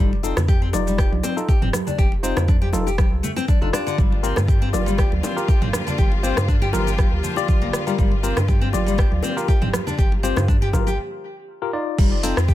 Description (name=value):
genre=afro house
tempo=120 BPM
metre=4/4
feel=swing 54% on 16ths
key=G minor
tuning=A4 = 440 Hz
part: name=nylon-string guitar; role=arpeggios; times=0.0-12.5 s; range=D3 to G4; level=-27 LUFS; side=left 3 dB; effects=sidechain pumping, tape echo
part: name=tine electric piano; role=stabs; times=0.0-12.4 s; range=Eb4 to D5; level=-27 LUFS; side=left 4 dB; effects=medium stereo tremolo, sidechain pumping, tape echo
part: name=round analog bass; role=bass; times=0.0-12.5 s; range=F1 to G2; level=-23 LUFS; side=equal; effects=sidechain pumping
part: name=congas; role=percussion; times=0.1-11.0 s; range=none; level=-30 LUFS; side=right 5 dB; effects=none
part: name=deep house drum kit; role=drums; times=0.2-12.5 s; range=cabasa, crash cymbal, hi-hat, rim click, toms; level=-28 LUFS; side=equal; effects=overdrive
part: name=bongos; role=percussion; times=0.4-10.8 s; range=none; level=-32 LUFS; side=left 3 dB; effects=none
part: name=electronic kick drum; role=drums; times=0.5-12.5 s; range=none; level=-18 LUFS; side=equal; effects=none
part: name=rich studio string section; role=sustained chords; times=4.0-12.5 s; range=D3 to F4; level=-31 LUFS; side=left 1 dB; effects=sidechain pumping
room=small room reverb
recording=none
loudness=-17 LUFS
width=side -14 dB against mid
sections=0.0-12.0 A section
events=break 11.0-12.0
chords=0.0 F7; 4.0 Gm7; 12.0 F7